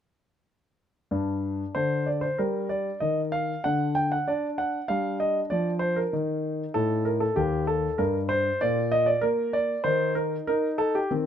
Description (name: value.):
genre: classical-period piano sonatina.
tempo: 96 BPM.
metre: 4/4.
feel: rubato.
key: G minor.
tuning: A4 = 440 Hz.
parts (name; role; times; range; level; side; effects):
clear concert grand piano; solo; 1.1-11.3 s; Eb2 to G5; -24 LUFS; equal; none.
room: light reverb.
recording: close, detailed microphones.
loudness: -24 LUFS.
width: side -9 dB against mid.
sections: 1.1-11.3 A section.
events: none.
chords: 1.1 G5; 3.6 N.C.; 4.9 G5; 6.1 Eb; 8.6 Bb5; 9.9 N.C..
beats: | 1.11 1.75 2.38 3.01 | 3.64 4.27 4.89 5.52 | 6.14 6.75 7.37 7.99 | 8.61 9.23 9.86 10.48 | 11.11.